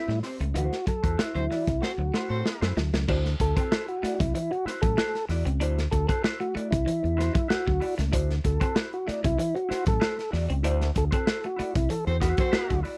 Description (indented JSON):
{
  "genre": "funk",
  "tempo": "95 BPM",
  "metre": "4/4",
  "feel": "straight",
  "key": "unclear",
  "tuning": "A4 = 440 Hz",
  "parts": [
    { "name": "tonewheel organ", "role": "melody", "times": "0.0-12.8 s", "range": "E4 to A4", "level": "-31 LUFS", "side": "equal", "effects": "overdrive, slow rotary speaker" },
    { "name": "mellow electric guitar", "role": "accompaniment", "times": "0.0-13.0 s", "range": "C4 to D5", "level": "-37 LUFS", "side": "equal", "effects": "wah" },
    { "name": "semi-hollow electric guitar", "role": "riff", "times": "0.1-12.9 s", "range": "E3 to D4", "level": "-38 LUFS", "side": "equal", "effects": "lush chorus" },
    { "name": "fingered electric bass", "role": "bass", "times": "0.1-12.8 s", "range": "A1 to A2", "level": "-29 LUFS", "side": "equal", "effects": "none" },
    { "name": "crunchy breakbeat drum kit", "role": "drums", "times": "0.1-13.0 s", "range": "crash cymbal, hi-hat, kick drum, snare drum", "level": "-30 LUFS", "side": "equal", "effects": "none" },
    { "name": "warm horn section", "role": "second line", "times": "1.3-2.7, 12.1-12.8 s", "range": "C4 to C5", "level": "-35 LUFS", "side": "equal", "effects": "none" }
  ],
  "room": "little or no reverb",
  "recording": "dry, close 1970s-style studio recording",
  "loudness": "-27 LUFS",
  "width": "mono",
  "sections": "0.0-3.1 A section; 3.1-13.0 B section",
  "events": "drum fill 1.8-3.1; band accent 10.6-13.0",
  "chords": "0.0 Am7; 0.5 D9"
}